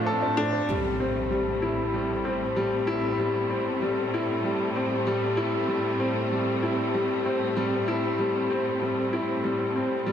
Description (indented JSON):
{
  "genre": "piano and strings electronica",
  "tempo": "96 BPM",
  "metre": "4/4",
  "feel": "straight",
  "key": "A minor",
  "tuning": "A4 = 440 Hz",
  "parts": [
    { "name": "muted studio string section", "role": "sustained chords", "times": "0.0-10.1 s", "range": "F3 to D4", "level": "-30 LUFS", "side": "equal", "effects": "none" },
    { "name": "bright upright piano", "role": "riff", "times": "0.0-10.1 s", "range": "G3 to A4", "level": "-26 LUFS", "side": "left 2 dB", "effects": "ping-pong delay" },
    { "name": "warm studio cello section", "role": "bass", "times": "0.0-10.1 s", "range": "A2", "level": "-34 LUFS", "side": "right 1 dB", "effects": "none" },
    { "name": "soft round pluck", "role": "arpeggios", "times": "0.1-0.7 s", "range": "A4 to D6", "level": "-38 LUFS", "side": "right 3 dB", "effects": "none" },
    { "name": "impact", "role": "sound effects", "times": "0.7-3.2 s", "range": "none", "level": "-36 LUFS", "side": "right 1 dB", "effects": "none" }
  ],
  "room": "moderate lush hall reverb, RT60 2.3 s",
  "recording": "none",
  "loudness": "-24 LUFS",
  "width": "side -9 dB against mid",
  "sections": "0.7-10.1 A section",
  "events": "impact 0.7-3.2",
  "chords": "0.0 Dm7/A; 0.7 Am7",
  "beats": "0.06 | 0.69 1.31 1.94 2.56 | 3.19 3.81 4.44 5.06 | 5.69 6.31 6.94 7.56 | 8.19 8.81 9.44 10.06"
}